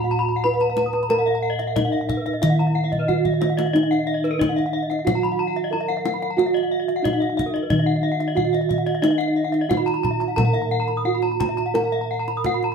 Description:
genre	Balinese gamelan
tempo	91 BPM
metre	4/4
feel	straight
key	Eb pelog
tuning	A4 = 439 Hz
part	gamelan-type bronze metallophone	melody	0.0-12.7 s	Eb4 to Cb5-20c	-23 LUFS	right 3 dB	none
part	gamelan-type bronze metallophone	arpeggios	0.0-12.7 s	Bb4-30c to Eb6	-26 LUFS	left 4 dB	none
part	gamelan-type bronze metallophone	arpeggios	0.0-12.7 s	Bb4-30c to Eb6	-30 LUFS	right 2 dB	none
part	gamelan-type bossed gongs	bass	0.0-12.7 s	Bb2-30c to Bb4-30c	-24 LUFS	equal	none
part	kendang	percussion	0.6-12.7 s	none	-28 LUFS	left 2 dB	none
room	moderate studio reverb, RT60 0.8 s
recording	band playing live in one room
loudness	-19 LUFS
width	side -6 dB against mid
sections	0.0-12.7 A section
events	drum fill 2.9-3.7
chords	none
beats	0.43 | 1.10 1.76 2.42 3.08 | 3.74 4.40 5.06 5.73 | 6.39 7.05 7.71 8.37 | 9.03 9.70 10.37 11.06 | 11.75 12.46

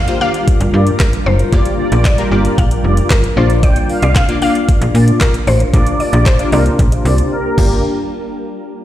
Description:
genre	dance-pop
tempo	114 BPM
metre	4/4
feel	straight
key	G minor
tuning	A4 = 440 Hz
part	filtered supersaw swell	melody	0.0-7.8 s	Bb4 to G5	-24 LUFS	right 3 dB	phaser, low-pass filter, digital delay
part	mallet-like synth pluck	melody	0.0-7.8 s	Bb4 to G5	-22 LUFS	left 2 dB	chorus, low-pass filter, digital delay
part	glassy FM pad	sustained chords	0.0-7.8 s	G3 to Bb4	-21 LUFS	left 2 dB	ensemble chorus, built-in reverb, sidechain pumping, low-pass filter
part	slap-like FM bass	bass	0.0-7.8 s	F1 to Bb2	-13 LUFS	equal	sidechain pumping
part	funky polysynth comp	accompaniment	0.1-7.8 s	Bb3 to D5	-20 LUFS	left 2 dB	chorus, sidechain pumping, low-pass filter
part	smooth R&B drum kit	drums	0.1-7.7 s	crash cymbal, handclaps, hi-hat, kick drum, snare drum	-14 LUFS	equal	none
room	light reverb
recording	played on a big sound system in a bare room, large studio reverb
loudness	-11 LUFS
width	side -13 dB against mid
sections	0.0-7.8 A section; 7.8-8.8 B section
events	filter sweep 0.0-7.8; silent gap 7.3-7.8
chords	0.0 Gm7; 3.4 Bb; 7.6 Gm7; 7.8 N.C.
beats	0.47 1.00 | 1.53 2.05 2.58 3.10 | 3.63 4.16 4.68 5.21 | 5.74 6.26 6.79 7.32

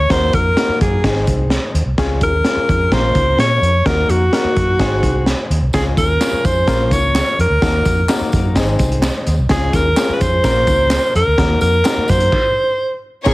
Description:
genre	uptempo 1960s-style soul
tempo	128 BPM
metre	4/4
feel	straight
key	Db major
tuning	A4 = 439 Hz
part	bright alto saxophone	melody	0.0-13.3 s	Gb4 to Db5	-16 LUFS	equal	none
part	vintage muted fingered electric bass	bass	0.0-13.3 s	Ab1 to Bb2	-18 LUFS	equal	none
part	clear upright piano	accompaniment	0.1-13.3 s	Ab3 to Bb4	-22 LUFS	left 3 dB	none
part	crunchy breakbeat drum kit	drums	0.1-13.3 s	crash cymbal, hi-hat, kick drum, snare drum	-18 LUFS	equal	none
part	tambourine and handclaps	percussion	5.7-13.3 s	none	-30 LUFS	right 1 dB	none
part	warm studio string section	second line	13.3 s	Db5 to Db6	-18 LUFS	left 2 dB	none
room	light reverb, studio reverb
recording	heavily compressed radio sound, multiband compression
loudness	-13 LUFS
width	side -19 dB against mid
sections	0.0-13.3 A section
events	stop 12.3-13.3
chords	0.1 Ebm; 1.0 Ab; 2.0 Db; 2.9 Bbm; 3.9 Ebm; 4.8 Ab; 5.7 Db; 6.7 Bbm; 7.6 Ebm; 8.6 Ab; 9.5 Db; 10.4 Bbm; 11.4 Ebm; 12.3 N.C.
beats	| 0.10 0.57 1.04 1.51 | 1.98 2.45 2.92 3.39 | 3.86 4.33 4.80 5.27 | 5.74 6.21 6.68 7.15 | 7.62 8.09 8.56 9.03 | 9.50 9.97 10.44 10.91 | 11.38 11.85 12.32 12.79 | 13.26

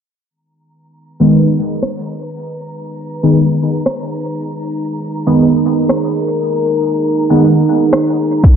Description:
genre	dub techno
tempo	118 BPM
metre	4/4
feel	straight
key	G# minor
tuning	A4 = 439 Hz
part	deep dark ambient pad	sustained chords	2.1-8.6 s	D#4 to B4	-17 LUFS	right 1 dB	chorus, built-in reverb, sidechain pumping
part	flickering grainy texture	texture	1.7-8.6 s	A#5	-33 LUFS	equal	built-in reverb, sidechain pumping
part	resonant sweep polysynth	stabs	1.2-7.5 s	D#3 to B3	-13 LUFS	equal	chorus, phaser, sidechain pumping, dub echo
part	electronic rim click	drums	1.8-8.0 s	none	-18 LUFS	equal	overdrive, studio reverb, dub echo
part	electronic kick drum	drums	8.4-8.5 s	none	-5 LUFS	equal	overdrive, studio reverb
room	moderate echo chamber reverb, RT60 1.8 s, digital ambience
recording	dark, warm production, low-pass filter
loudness	-12 LUFS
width	side -8 dB against mid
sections	0.3-8.6 A section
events	filter sweep 0.3-8.6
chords	0.3 G#m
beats	| 0.30 0.81 1.32 1.83 | 2.33 2.84 3.35 3.86 | 4.37 4.88 5.39 5.89 | 6.40 6.91 7.42 7.93 | 8.44

